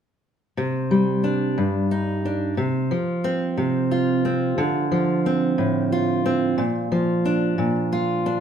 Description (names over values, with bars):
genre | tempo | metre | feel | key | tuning
folk | 60 BPM (dotted quarters) | 6/8 | straight | C dorian | A4 = 440 Hz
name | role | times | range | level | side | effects
fingerpicked steel-string acoustic guitar | solo | 0.6-8.4 s | G2 to F4 | -20 LUFS | right 1 dB | none
room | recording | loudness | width
moderate large studio reverb, RT60 1.0 s | band playing live in one room | -20 LUFS | side -8 dB against mid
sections
0.6-8.4 A section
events
none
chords
0.6 Cmadd9; 2.6 F5/C; 4.6 Dm7; 6.6 Bb